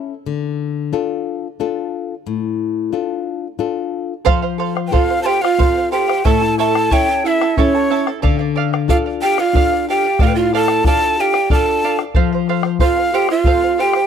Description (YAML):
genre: andean folk, Andean ensemble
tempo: 91 BPM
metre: 3/4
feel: straight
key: D minor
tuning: A4 = 440 Hz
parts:
  - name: flamenco guitar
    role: accompaniment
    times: 0.0-14.0 s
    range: A2 to A4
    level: -21 LUFS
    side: left 10 dB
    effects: none
  - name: charango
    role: accompaniment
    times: 4.2-14.1 s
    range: E4 to A5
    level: -22 LUFS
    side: right 11 dB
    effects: none
  - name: bombo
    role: percussion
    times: 4.3-14.1 s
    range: none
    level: -18 LUFS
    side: equal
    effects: none
  - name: breathy bright quena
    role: melody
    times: 4.9-14.1 s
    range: C#5 to A5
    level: -18 LUFS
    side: left 2 dB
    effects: none
  - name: breathy large pan pipes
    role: second line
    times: 4.9-14.1 s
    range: C#4 to C#5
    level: -19 LUFS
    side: right 10 dB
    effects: none
room: small room ambience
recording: dry, close 1970s-style studio recording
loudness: -14 LUFS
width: side -8 dB against mid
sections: 0.0-4.3 A section; 4.3-14.1 B section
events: charango solo 0.0-4.3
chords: 0.3 Dm; 4.3 F; 6.3 A; 8.2 Dm; 12.2 F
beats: | 0.27 0.94 1.61 | 2.27 2.94 3.60 | 4.27 4.93 5.59 | 6.25 6.91 7.57 | 8.23 8.89 9.54 | 10.20 10.85 11.51 | 12.16 12.81 13.46